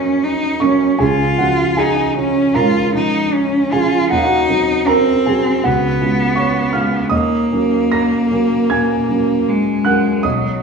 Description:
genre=classical, romantic duo for cello and grand piano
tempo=78 BPM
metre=4/4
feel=rubato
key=unclear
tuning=A4 = 440 Hz
part: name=clear cello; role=melody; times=0.0-10.6 s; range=F#3 to E#4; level=-16 LUFS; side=equal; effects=none
part: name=dark baby grand piano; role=accompaniment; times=0.0-10.6 s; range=B1 to A#6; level=-16 LUFS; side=right 2 dB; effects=none
room=wet recital hall reverb, RT60 1.4 s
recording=small room ambience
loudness=-13 LUFS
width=side -5 dB against mid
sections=0.0-10.6 A section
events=none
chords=0.0 F#; 1.0 C#; 4.1 Cdim/Eb; 5.7 C#; 7.1 D#m7

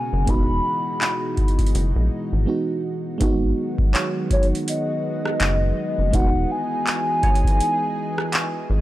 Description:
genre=contemporary R&B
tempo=82 BPM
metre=4/4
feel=swing 58% on 16ths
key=G# minor from 3.2 s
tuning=A4 = 439 Hz
part: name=hollow clarinet-like synth lead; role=melody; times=0.0-8.7 s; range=C#5 to B5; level=-25 LUFS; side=equal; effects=chorus, digital delay
part: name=mellow FM electric piano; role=accompaniment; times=0.0-8.8 s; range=G#3 to F#4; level=-28 LUFS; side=right 3 dB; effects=chorus
part: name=lush unison pad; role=sustained chords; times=0.0-8.8 s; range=B2 to A#4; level=-28 LUFS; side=left 1 dB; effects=chorus
part: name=rubbery square bass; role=bass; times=0.1-8.8 s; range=E1 to A#1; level=-21 LUFS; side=equal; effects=none
part: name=booming analog drum machine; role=drums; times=0.3-8.5 s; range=handclaps, hi-hat, kick drum, rim click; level=-21 LUFS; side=equal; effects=none
part: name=glassy wavetable pluck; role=texture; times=3.9-8.8 s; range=C#5 to D#5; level=-35 LUFS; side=right 2 dB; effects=chorus, digital delay
room=little or no reverb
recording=none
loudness=-19 LUFS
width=side -15 dB against mid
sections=0.0-3.2 A section; 3.2-8.8 B section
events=break 2.5-3.2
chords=0.3 Emaj9; 3.2 G#m7; 6.1 Emaj7

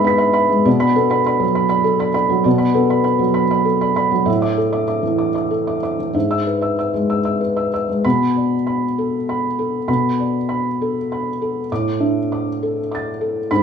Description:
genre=neoclassical minimalist piano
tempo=66 BPM (dotted quarters)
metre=6/8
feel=rubato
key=B dorian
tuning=A4 = 440 Hz
part: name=felt-muted upright piano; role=solo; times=0.0-13.6 s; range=G#2 to B6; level=-16 LUFS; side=equal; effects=none
room=moderate large studio reverb, RT60 0.8 s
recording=band playing live in one room, small room reverb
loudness=-16 LUFS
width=side -7 dB against mid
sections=0.0-8.0 A section; 8.0-13.6 B section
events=none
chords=0.0 E/G#; 0.7 Bm7; 4.3 Asus4; 6.1 E/G#; 8.0 Bm7; 11.7 Asus4

